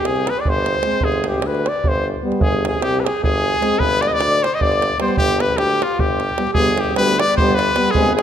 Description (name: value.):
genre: balkan folk, Balkan brass band.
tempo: 303 BPM (eighths).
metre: 7/8.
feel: straight.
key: unclear.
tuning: A4 = 441 Hz.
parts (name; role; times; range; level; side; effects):
bright trumpet; melody; 0.0-8.2 s; F4 to Eb5; -19 LUFS; left 3 dB; none.
mellow flugelhorn; second line; 0.0-8.2 s; F4 to Eb5; -24 LUFS; right 3 dB; none.
clear tuba; bass; 0.0-8.2 s; G1 to D2; -23 LUFS; equal; none.
davul; percussion; 0.1-8.2 s; none; -22 LUFS; right 2 dB; none.
warm French horn; accompaniment; 0.8-8.1 s; B3 to C4; -28 LUFS; left 5 dB; none.
warm euphonium; accompaniment; 0.8-8.1 s; G3 to Ab3; -25 LUFS; right 3 dB; none.
room: wet concert hall reverb, RT60 2.0 s.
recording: none.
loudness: -15 LUFS.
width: side -9 dB against mid.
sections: 0.0-6.6 A section; 6.6-8.2 A section.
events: none.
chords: 0.0 Gadd11; 1.0 G; 2.4 Abmaj7/G; 3.8 G.